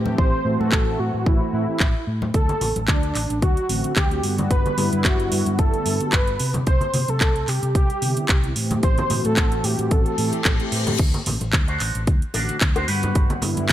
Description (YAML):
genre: nu-disco, nu disco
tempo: 111 BPM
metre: 4/4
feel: swing 55% on 16ths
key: A dorian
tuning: A4 = 441 Hz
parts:
  - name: mellow synth brass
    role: accompaniment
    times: 0.0-13.7 s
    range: D3 to F#5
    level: -27 LUFS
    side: equal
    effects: chorus
  - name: hollow-body short-scale fingered electric bass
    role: bass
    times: 0.0-13.7 s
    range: G1 to C3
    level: -25 LUFS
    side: equal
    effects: none
  - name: congas and bongos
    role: percussion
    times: 0.1-13.7 s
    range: none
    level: -29 LUFS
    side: left 1 dB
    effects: none
  - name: wide unison lead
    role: melody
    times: 0.2-10.7 s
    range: D4 to C5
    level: -26 LUFS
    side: right 1 dB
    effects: tape echo
  - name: electronic kick drum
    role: drums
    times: 0.2-13.7 s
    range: none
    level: -20 LUFS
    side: equal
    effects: none
  - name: house drum kit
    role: drums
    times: 0.7-13.7 s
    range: crash cymbal, handclaps, hi-hat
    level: -25 LUFS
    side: right 1 dB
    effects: none
  - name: reverse cymbal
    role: sound effects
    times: 10.2-11.0 s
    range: none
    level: -31 LUFS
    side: left 6 dB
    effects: none
  - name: electric guitar with an envelope filter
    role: riff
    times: 11.4-13.7 s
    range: D4 to D5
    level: -28 LUFS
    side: right 2 dB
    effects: wide subtle chorus
room: digital ambience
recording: none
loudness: -18 LUFS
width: side -12 dB against mid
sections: 0.0-13.7 A section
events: reverse cymbal 10.2-11.0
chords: 0.0 Am7; 2.3 D7; 4.2 Gmaj7; 6.4 Cmaj9; 8.6 Am7; 11.0 D7; 12.9 Gmaj7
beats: | 0.18 0.72 1.26 1.80 | 2.34 2.88 3.42 3.97 | 4.51 5.05 5.59 6.13 | 6.67 7.21 7.75 8.29 | 8.83 9.37 9.91 10.45 | 10.99 11.53 12.07 12.61 | 13.15 13.70